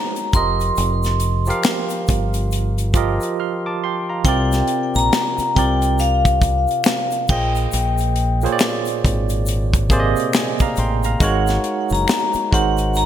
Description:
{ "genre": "R&B, neo-soul", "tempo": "69 BPM", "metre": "4/4", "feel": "swing 61% on 16ths", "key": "C minor", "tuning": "A4 = 441 Hz", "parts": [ { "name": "vibraphone with hard mallets", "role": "melody", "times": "0.0-13.1 s", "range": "F5 to C6", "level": "-21 LUFS", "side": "left 2 dB", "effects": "digital delay" }, { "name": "barky tine electric piano", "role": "accompaniment", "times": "0.0-13.1 s", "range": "Bb2 to F6", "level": "-22 LUFS", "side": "right 4 dB", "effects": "slow stereo tremolo" }, { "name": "tight funk drum kit", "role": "drums", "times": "0.2-13.1 s", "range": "crash cymbal, hi-hat, kick drum, snare drum", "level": "-20 LUFS", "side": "left 1 dB", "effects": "gated reverb" }, { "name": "egg shaker and finger snaps", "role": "percussion", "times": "0.2-13.1 s", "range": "none", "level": "-31 LUFS", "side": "left 8 dB", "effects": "none" }, { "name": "deep dub fingered electric bass", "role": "bass", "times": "0.3-13.1 s", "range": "F1 to C2", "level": "-20 LUFS", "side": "equal", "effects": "none" } ], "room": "light reverb, studio reverb", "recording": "bright 1980s-style digital production", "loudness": "-16 LUFS", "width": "side -10 dB against mid", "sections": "0.0-4.2 A section; 4.2-13.1 A section", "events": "break 3.4-4.2", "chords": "0.3 F9sus4; 4.2 C9sus4; 7.3 Bb9sus4; 11.2 Ab9sus4" }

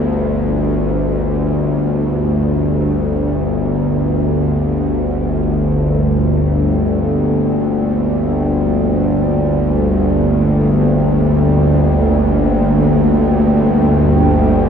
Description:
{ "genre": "dark ambient drone", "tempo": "free time", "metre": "none", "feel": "none", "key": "unclear", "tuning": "A4 = 439 Hz", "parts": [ { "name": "dark analog pad", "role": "sustained chords", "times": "0.0-14.7 s", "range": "Bb3 to G5", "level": "-24 LUFS", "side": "right 1 dB", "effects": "wide subtle chorus" }, { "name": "bowed-like drone", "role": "drone", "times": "0.0-14.7 s", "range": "G1 to D2", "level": "-13 LUFS", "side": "equal", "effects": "built-in reverb" } ], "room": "wet huge ambient reverb, RT60 7.2 s", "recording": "dark, warm production", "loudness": "-13 LUFS", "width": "side -7 dB against mid", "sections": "0.0-14.7 A section", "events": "fade-in on analog synth pad 0.0-14.7", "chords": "0.0 Gmadd9" }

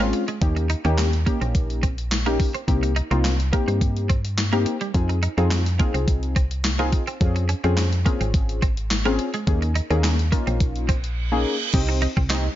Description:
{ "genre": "dance-pop", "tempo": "106 BPM", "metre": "4/4", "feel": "straight", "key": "unclear", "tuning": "A4 = 445 Hz", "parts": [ { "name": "warm analog keys", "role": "accompaniment", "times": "0.0-12.5 s", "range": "Ab3 to Eb5", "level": "-26 LUFS", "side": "left 2 dB", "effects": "chorus, sidechain pumping" }, { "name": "twelve-string electric guitar", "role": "riff", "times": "0.0-12.3 s", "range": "G3 to Eb4", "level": "-30 LUFS", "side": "right 5 dB", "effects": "wide subtle chorus" }, { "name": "solid FM bass", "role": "bass", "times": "0.0-12.5 s", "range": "Ab1 to G2", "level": "-22 LUFS", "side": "equal", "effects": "sidechain pumping" }, { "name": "gated 80s digital drum machine", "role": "drums", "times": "0.0-12.4 s", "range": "crash cymbal, handclaps, hi-hat, kick drum, snare drum", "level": "-23 LUFS", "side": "equal", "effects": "gated reverb, gated reverb snare, overdrive" }, { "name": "reverse cymbal", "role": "sound effects", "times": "10.9-11.7 s", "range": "none", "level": "-31 LUFS", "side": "right 7 dB", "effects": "none" }, { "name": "group handclap", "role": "percussion", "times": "12.3-12.4 s", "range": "none", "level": "-33 LUFS", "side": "right 5 dB", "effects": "none" } ], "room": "little or no reverb", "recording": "nothing above 7.4 kHz", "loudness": "-19 LUFS", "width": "side -13 dB against mid", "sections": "0.0-11.7 A section", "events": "reverse cymbal 10.9-11.7; silent gap 11.2-11.7", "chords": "0.4 Eb7; 2.7 Cm7; 4.9 Fm7; 7.2 Dbmaj7; 9.5 Eb7sus4; 11.7 Cm" }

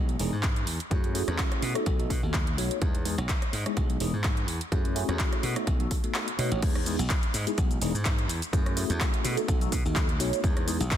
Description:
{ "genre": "filtered disco house", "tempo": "126 BPM", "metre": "4/4", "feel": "swing 54% on 16ths", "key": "E major", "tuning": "A4 = 438 Hz", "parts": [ { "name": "tine electric piano", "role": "accompaniment", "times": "0.0-10.8 s", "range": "G#3 to C#5", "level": "-32 LUFS", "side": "equal", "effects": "overdrive, fast stereo tremolo, phaser, sidechain pumping, low-pass filter" }, { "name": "glassy slap bass", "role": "bass", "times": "0.0-10.9 s", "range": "E1 to B2", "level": "-30 LUFS", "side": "equal", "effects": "sidechain pumping, low-pass filter" }, { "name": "house drum kit", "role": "drums", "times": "0.1-11.0 s", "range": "crash cymbal, handclaps, hi-hat, rim click, shaker", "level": "-33 LUFS", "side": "equal", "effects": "overdrive, sidechain pumping on hats, sidechain pumping on cymbals, sidechain pumping on perc" }, { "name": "electronic kick drum", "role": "drums", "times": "0.4-11.0 s", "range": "none", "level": "-27 LUFS", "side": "equal", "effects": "overdrive" } ], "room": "light reverb, digital ambience", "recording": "dense, heavily limited modern master", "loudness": "-25 LUFS", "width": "side -10 dB against mid", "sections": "0.0-6.6 A section; 6.6-11.0 B section", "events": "filter sweep 0.0-6.6; kick drops out 6.2-6.6; drop 6.6-11.0", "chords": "0.0 Emaj7; 0.9 F#m9; 1.9 B7; 2.8 Emaj7; 4.7 F#m9; 5.7 B7; 6.6 Emaj7; 8.5 F#m9; 9.5 B7; 10.4 Emaj7" }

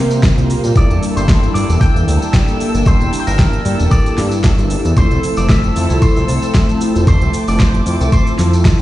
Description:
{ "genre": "nu-disco, nu disco", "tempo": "114 BPM", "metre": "4/4", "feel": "swing 55% on 16ths", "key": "G dorian", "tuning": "A4 = 440 Hz", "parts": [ { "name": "mellow synth brass", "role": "accompaniment", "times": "0.0-8.8 s", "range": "F3 to Bb4", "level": "-19 LUFS", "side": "equal", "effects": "chorus, phaser, sidechain pumping" }, { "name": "muted chamber violin section", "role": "sustained chords", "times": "0.0-8.8 s", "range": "Bb3 to E6", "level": "-27 LUFS", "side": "right 1 dB", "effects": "sidechain pumping" }, { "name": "fat analog bass", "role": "bass", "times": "0.0-8.7 s", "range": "E1 to C3", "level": "-15 LUFS", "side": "equal", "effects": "tube saturation" }, { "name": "pop drum kit", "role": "drums", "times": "0.1-8.8 s", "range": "hi-hat, shaker, snare drum", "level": "-22 LUFS", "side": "equal", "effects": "none" }, { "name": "tambourine", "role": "percussion", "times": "0.1-8.8 s", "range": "none", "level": "-34 LUFS", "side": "left 2 dB", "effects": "none" }, { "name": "electronic kick drum", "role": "drums", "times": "0.2-8.8 s", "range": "none", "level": "-12 LUFS", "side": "equal", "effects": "none" }, { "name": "electric guitar with an envelope filter", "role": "melody", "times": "0.8-8.8 s", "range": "Bb4 to G5", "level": "-25 LUFS", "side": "left 1 dB", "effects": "dub echo" } ], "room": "little or no reverb", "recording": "played on a big sound system in a bare room, stone room reverb, nothing above 10.3 kHz", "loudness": "-11 LUFS", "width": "side -15 dB against mid", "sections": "0.0-8.8 A section", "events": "none", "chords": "0.0 C7sus4; 0.8 Gm69; 5.0 Fmaj7" }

